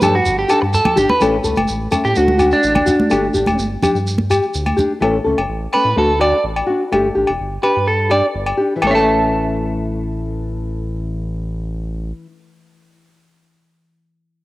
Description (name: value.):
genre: highlife guitar band.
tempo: 126 BPM.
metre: 4/4.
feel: straight.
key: A mixolydian.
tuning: A4 = 440 Hz.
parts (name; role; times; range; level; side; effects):
nylon-string guitar; accompaniment; 0.0-12.5 s; E3 to A4; -19 LUFS; left 2 dB; none.
electric guitar at the edge of break-up; arpeggios; 0.0-12.2 s; D4 to A5; -18 LUFS; right 2 dB; vibrato effect, analog delay.
round analog bass; bass; 0.0-12.1 s; E1 to A2; -23 LUFS; equal; none.
agogo bells; percussion; 0.0-8.9 s; none; -23 LUFS; left 3 dB; none.
congas; percussion; 0.0-4.9 s; none; -22 LUFS; right 2 dB; none.
shekere; percussion; 0.0-4.9 s; none; -26 LUFS; right 2 dB; none.
room: moderate lush hall reverb, RT60 2.3 s.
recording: home recording on cassette.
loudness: -14 LUFS.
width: side -17 dB against mid.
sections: 0.0-1.2 A section; 1.2-8.8 B section; 8.8-12.6 C section.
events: clean electric guitar solo 1.2-8.8.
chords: 0.0 Gsus2; 1.2 A; 2.2 D; 3.1 Gsus2; 5.0 A; 6.0 D; 6.9 Gsus2; 8.8 A.